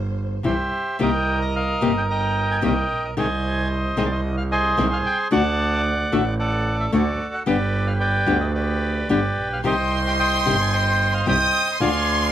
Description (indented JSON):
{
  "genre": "tango",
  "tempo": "111 BPM",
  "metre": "4/4",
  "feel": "rubato",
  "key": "unclear",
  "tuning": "A4 = 444 Hz",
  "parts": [
    { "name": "rich studio violin section", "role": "second line", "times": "0.0-0.5, 9.6-12.3 s", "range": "C5 to Eb6", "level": "-24 LUFS", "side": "left 1 dB", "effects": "none" },
    { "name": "bright double bass", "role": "bass", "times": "0.0-12.3 s", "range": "G1 to D2", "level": "-24 LUFS", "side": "right 2 dB", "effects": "none" },
    { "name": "nylon-string guitar", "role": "accompaniment", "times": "0.4-11.9 s", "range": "C3 to Ab4", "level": "-21 LUFS", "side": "left 4 dB", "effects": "none" },
    { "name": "bandoneon", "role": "melody", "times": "0.5-12.3 s", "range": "F#4 to C6", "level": "-22 LUFS", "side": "right 1 dB", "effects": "none" }
  ],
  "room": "light reverb",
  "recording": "none",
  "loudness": "-19 LUFS",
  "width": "side -11 dB against mid",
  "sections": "0.0-1.0 A section; 1.0-12.3 B section",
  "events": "violin section solo 0.0-1.0",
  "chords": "0.0 C; 1.0 Cm7; 3.2 Ab/C; 5.3 D; 7.5 G; 9.6 Cm; 11.8 Ddim",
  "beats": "0.45 | 1.00 1.55 2.09 2.63 | 3.17 3.71 4.24 4.78 | 5.32 5.85 6.38 6.92 | 7.46 8.00 8.54 9.09 | 9.64 10.19 10.73 11.27 | 11.80"
}